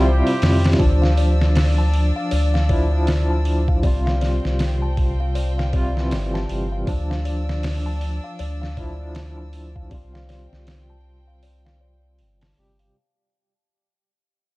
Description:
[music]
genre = trip hop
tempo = 79 BPM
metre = 4/4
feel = swing 60% on 16ths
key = D minor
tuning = A4 = 440 Hz
[part]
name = barky tine electric piano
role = accompaniment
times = 0.0-13.0 s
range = C3 to G4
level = -25 LUFS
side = equal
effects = tremolo, low-pass filter, tape echo
[part]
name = clear studio violin section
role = sustained chords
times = 0.0-12.9 s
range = C4 to E6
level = -34 LUFS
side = left 2 dB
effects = vintage 12-bit sampler grit
[part]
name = warm sub bass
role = bass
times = 0.0-12.9 s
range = G1 to F2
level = -20 LUFS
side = equal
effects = none
[part]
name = flickering grainy texture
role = texture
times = 0.1-0.8 s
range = C5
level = -39 LUFS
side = right 2 dB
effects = none
[part]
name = trumpet with plunger mute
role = melody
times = 0.1-0.8 s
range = G4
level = -33 LUFS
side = left 1 dB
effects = tape echo
[part]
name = trip hop sampler-style drum kit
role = drums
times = 0.3-12.9 s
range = hi-hat, kick drum, snare drum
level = -24 LUFS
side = equal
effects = none
[part]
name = music box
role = arpeggios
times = 0.8-12.9 s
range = D5 to A5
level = -33 LUFS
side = left 4 dB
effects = low-pass filter, tape echo
[sound]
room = small room ambience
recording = dark, warm production, vinyl crackle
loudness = -18 LUFS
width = side -20 dB against mid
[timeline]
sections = 0.8-12.9 A section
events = fade-out 0.8-12.9; filter sweep on music box 0.8-12.9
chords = 0.0 Csus4; 0.8 Dmadd9; 3.8 Csus4; 6.9 Dmadd9; 9.9 Csus4

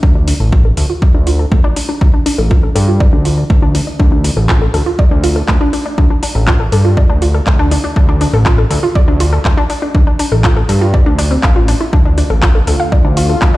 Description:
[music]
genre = melodic techno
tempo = 121 BPM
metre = 4/4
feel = straight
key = D minor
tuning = A4 = 440 Hz
[part]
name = analog pluck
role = arpeggios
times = 0.0-13.6 s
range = A3 to F5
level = -18 LUFS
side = equal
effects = chorus, sidechain pumping, digital delay
[part]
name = fat analog bass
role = bass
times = 0.0-13.5 s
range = A1 to G2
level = -13 LUFS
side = equal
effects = tube saturation, sidechain pumping
[part]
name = electronic kick drum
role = drums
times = 0.0-13.5 s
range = none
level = -11 LUFS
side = equal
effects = none
[part]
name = techno drum kit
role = drums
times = 0.3-13.5 s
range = handclaps, hi-hat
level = -21 LUFS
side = equal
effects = none
[part]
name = lush unison pad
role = sustained chords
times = 12.2-13.6 s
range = D3 to F4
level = -20 LUFS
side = left 1 dB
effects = chorus, sidechain pumping
[sound]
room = light reverb, digital ambience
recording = played on a big sound system in a bare room, large studio reverb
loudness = -9 LUFS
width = side -17 dB against mid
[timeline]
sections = 0.0-13.6 A section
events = filter sweep on synth arpeggio sound 0.0-13.6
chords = 0.0 Dm

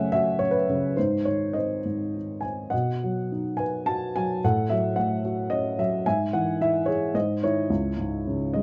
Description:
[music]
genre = classical, lyrical solo piano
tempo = 97-112 BPM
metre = 3/4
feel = rubato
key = C# minor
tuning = A4 = 439 Hz
[part]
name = dark upright piano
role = solo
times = 0.0-8.6 s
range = C#2 to A5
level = -26 LUFS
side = equal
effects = none
[sound]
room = light reverb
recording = dark, warm production, nothing above 8.0 kHz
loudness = -26 LUFS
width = mono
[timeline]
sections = 0.0-8.6 A section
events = upright piano fill 8.3-8.6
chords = 0.0 F#m; 1.0 G#; 2.7 B; 4.4 F#m/A; 6.1 C#madd11/G#; 7.1 G#; 7.7 C#m

